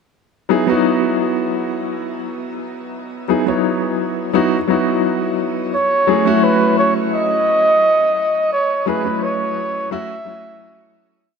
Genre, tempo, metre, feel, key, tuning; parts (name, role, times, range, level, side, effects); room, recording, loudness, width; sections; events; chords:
chillout; 86 BPM; 4/4; straight; A4 = 442 Hz
clear grand piano; accompaniment; 0.5-11.3 s; F#3 to C#5; -17 LUFS; left 1 dB; auto-pan, shimmer reverb, tape echo
trumpet with bucket mute; melody; 5.7-10.9 s; B4 to E5; -16 LUFS; right 1 dB; shimmer reverb
moderate plate reverb, RT60 3.7 s; -15 LUFS; side -5 dB against mid
0.2-11.3 groove
fade-out 7.6-11.3
0.2 Emaj7sus2; 5.7 F#m7